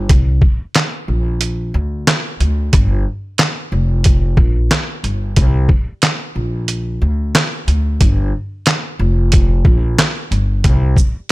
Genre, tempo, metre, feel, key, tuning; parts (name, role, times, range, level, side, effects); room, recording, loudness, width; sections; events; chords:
hip hop, boom-bap hip-hop; 91 BPM; 4/4; swing 60% on 16ths; G minor; A4 = 439 Hz
upright bass; bass; 0.0-10.9 s; F1 to D2; -15 LUFS; equal
trip hop sampler-style drum kit; drums; 0.1-11.3 s; handclaps, hi-hat, kick drum, shaker, snare drum; -13 LUFS; equal
little or no reverb; -13 LUFS; side -20 dB against mid
0.0-11.3 A section